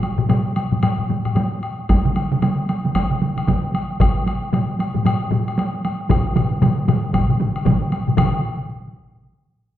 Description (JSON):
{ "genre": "japanese traditional, taiko drum ensemble", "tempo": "114 BPM", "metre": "4/4", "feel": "swing 60% on 16ths", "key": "none", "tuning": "none", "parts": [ { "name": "solo taiko drums", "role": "percussion", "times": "0.0-8.4 s", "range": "none", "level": "-22 LUFS", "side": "right 2 dB", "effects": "none" }, { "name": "woodblock", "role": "percussion", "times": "0.0-8.4 s", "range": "none", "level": "-28 LUFS", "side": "left 3 dB", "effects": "none" }, { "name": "taiko ensemble", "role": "percussion", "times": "0.2-8.7 s", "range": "none", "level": "-21 LUFS", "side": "left 3 dB", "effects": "none" }, { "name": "taiko ensemble", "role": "percussion", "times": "1.9-8.4 s", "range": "none", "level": "-23 LUFS", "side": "equal", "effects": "none" }, { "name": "taiko ensemble", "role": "percussion", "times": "2.0-8.7 s", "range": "none", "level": "-22 LUFS", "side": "right 2 dB", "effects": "none" } ], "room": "wet recital hall reverb, RT60 1.3 s", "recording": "recorded in a church or concert hall", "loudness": "-17 LUFS", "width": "side -12 dB against mid", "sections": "0.0-8.2 A section; 8.2-9.8 B section", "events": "speeding up 0.0-9.8", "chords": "none" }